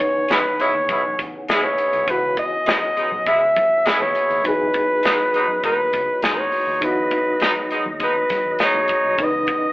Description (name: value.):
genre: lush 1970s-style soul.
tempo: 101 BPM.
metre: 4/4.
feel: straight.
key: E major.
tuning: A4 = 438 Hz.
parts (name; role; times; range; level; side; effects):
warm flugelhorn; melody; 0.0-9.7 s; G#4 to E5; -19 LUFS; equal; none.
mellow reed electric piano; accompaniment; 0.0-9.7 s; E3 to B4; -28 LUFS; equal; fast tremolo.
tonewheel organ; sustained chords; 0.0-9.7 s; B2 to D#5; -31 LUFS; equal; fast rotary speaker, overdrive.
modern studio drum kit; drums; 0.0-9.6 s; hi-hat, kick drum, snare drum; -25 LUFS; equal; none.
congas; percussion; 0.0-9.6 s; none; -36 LUFS; right 1 dB; none.
clear horn section; stabs; 0.3-9.2 s; B2 to E4; -22 LUFS; equal; none.
vintage muted fingered electric bass; bass; 0.6-9.4 s; G#1 to F#2; -41 LUFS; equal; none.
room: moderate studio reverb, RT60 0.8 s.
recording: band playing live in one room, telephone sound.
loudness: -17 LUFS.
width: side -18 dB against mid.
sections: 0.0-9.7 A section.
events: none.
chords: 0.0 C#m9; 4.5 Emaj9; 9.2 C#m9.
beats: 0.30 0.90 1.49 | 2.08 2.67 3.27 3.86 | 4.45 5.04 5.64 6.23 | 6.82 7.41 8.01 8.60 | 9.19.